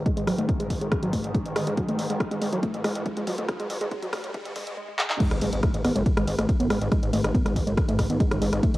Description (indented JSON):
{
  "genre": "driving peak-time techno",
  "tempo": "140 BPM",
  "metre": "4/4",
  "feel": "straight",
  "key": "unclear",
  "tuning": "A4 = 440 Hz",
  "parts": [
    { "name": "gritty driven synth bass", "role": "bass", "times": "0.0-8.8 s", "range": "F#1 to G#1", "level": "-30 LUFS", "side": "equal", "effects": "distortion, sidechain pumping, high-pass filter" },
    { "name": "swarming drone", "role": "drone", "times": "0.0-8.8 s", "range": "G#2 to D#3", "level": "-34 LUFS", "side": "equal", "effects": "built-in reverb, sidechain pumping, cassette tape" },
    { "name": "riser and impact", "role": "sound effects", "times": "1.0-6.9 s", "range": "none", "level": "-38 LUFS", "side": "equal", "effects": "none" },
    { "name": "woody wave-folded pluck", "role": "riff", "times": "0.1-8.7 s", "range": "F#3 to G#4", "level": "-28 LUFS", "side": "equal", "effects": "chorus, sidechain pumping, cassette tape, analog delay" },
    { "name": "electronic kick drum", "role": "drums", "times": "0.1-8.7 s", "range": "none", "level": "-25 LUFS", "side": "equal", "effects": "cassette tape" },
    { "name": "punchy analog drum machine", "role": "drums", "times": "0.1-8.8 s", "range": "crash cymbal, handclaps, hi-hat, ride cymbal, rim click", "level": "-31 LUFS", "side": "equal", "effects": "sidechain pumping on hats, cassette tape, sidechain pumping on cymbals" }
  ],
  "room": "light reverb, digital ambience",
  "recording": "home recording on cassette, high-pass filter",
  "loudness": "-23 LUFS",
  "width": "side -17 dB against mid",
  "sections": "0.0-5.2 A section; 5.2-8.8 B section",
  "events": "build-up 0.0-5.2; filter sweep on synth arpeggio sound 0.0-5.2; filter sweep 0.0-5.2; riser 1.0-4.8; drum fill 5.0; drop 5.2-8.8; impact 5.2-6.9",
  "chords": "0.0 G#5"
}